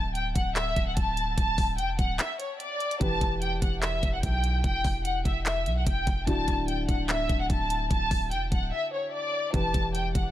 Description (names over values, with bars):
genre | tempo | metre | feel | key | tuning
hip hop, trap | 147 BPM | 4/4 | half-time | unclear | A4 = 440 Hz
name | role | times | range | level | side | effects
warm studio violin section | melody | 0.0-10.3 s | C#5 to A5 | -29 LUFS | left 1 dB | low-pass filter, ping-pong delay
long sustained 808-style bass | bass | 0.0-10.3 s | D1 to B1 | -30 LUFS | equal | none
trap drum kit | drums | 0.2-10.3 s | handclaps, hi-hat, kick drum | -28 LUFS | equal | none
dark concert grand piano | accompaniment | 3.0-10.3 s | D3 to B4 | -35 LUFS | left 1 dB | low-pass filter
room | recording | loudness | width
studio reverb | none | -25 LUFS | side -13 dB against mid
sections
0.0-10.3 A section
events
break 2.2-3.0, 8.7-9.5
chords
0.0 D5; 3.0 Em; 6.3 Dadd9; 9.5 Em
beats
0.15 0.56 0.97 | 1.38 1.78 2.19 2.60 | 3.01 3.42 3.83 4.23 | 4.64 5.05 5.46 5.87 | 6.27 6.68 7.09 7.50 | 7.91 8.31 8.72 9.13 | 9.54 9.95